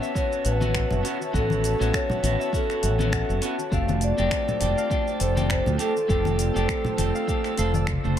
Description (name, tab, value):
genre	sunset chillout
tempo	101 BPM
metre	4/4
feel	swing 55% on 16ths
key	unclear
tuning	A4 = 438 Hz
part	clean electric guitar	accompaniment	0.0-8.2 s	A3 to C5	-29 LUFS	equal	auto-pan, dub echo
part	airy breathy pad	sustained chords	0.0-8.2 s	F4 to E6	-33 LUFS	equal	chorus
part	concert harp	arpeggios	0.0-8.2 s	F#4 to A5	-38 LUFS	right 1 dB	dub echo
part	smooth R&B drum kit	drums	0.0-8.2 s	finger snaps, hi-hat, shaker, toms	-32 LUFS	left 1 dB	none
part	vibraphone with soft mallets	melody	0.2-7.8 s	A4 to F5	-28 LUFS	equal	dub echo
part	electronic kick drum	drums	0.2-8.0 s	none	-28 LUFS	equal	overdrive
part	mellow fretless electric bass	bass	0.4-8.2 s	F1 to D2	-25 LUFS	equal	lush chorus
part	congas	percussion	0.6-7.8 s	none	-32 LUFS	left 4 dB	tape echo
room	moderate spring reverb, RT60 2.3 s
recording	echo-heavy mix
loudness	-21 LUFS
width	side -10 dB against mid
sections	0.0-8.2 A section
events	drum fill 7.9-8.2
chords	0.0 A6; 3.7 F6